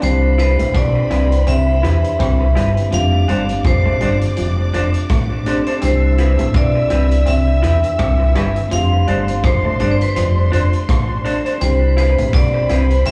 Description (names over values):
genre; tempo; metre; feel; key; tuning
lovers rock reggae; 83 BPM; 4/4; swing 57% on 16ths; C major; A4 = 442 Hz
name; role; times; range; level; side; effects
vibraphone with hard mallets; melody; 0.0-13.1 s; B4 to F5; -23 LUFS; equal; tape echo, slapback echo
warm symphonic string section; second line; 0.0-13.1 s; C5 to E6; -31 LUFS; equal; slapback echo
mellow tine electric piano; accompaniment; 0.0-13.1 s; Ab3 to B4; -28 LUFS; equal; dub echo, slapback echo
electric guitar through a small old amp; riff; 0.0-13.1 s; F3 to E4; -28 LUFS; equal; dub echo, slapback echo
deep dub fingered electric bass; bass; 0.0-13.1 s; F1 to E2; -18 LUFS; equal; none
vintage drum kit; drums; 0.0-13.1 s; hi-hat, kick drum, rim click; -25 LUFS; equal; none
electric guitar through a small old amp; stabs; 0.4-12.8 s; D4 to C5; -28 LUFS; equal; dub echo, slapback echo
room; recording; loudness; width
light reverb; live gig heard through the venue's PA, club reverb, small room ambience; -16 LUFS; mono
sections
0.0-13.1 A section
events
none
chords
0.0 Cmaj7; 2.9 F6; 5.8 Cmaj7; 8.7 F6; 11.6 Cmaj7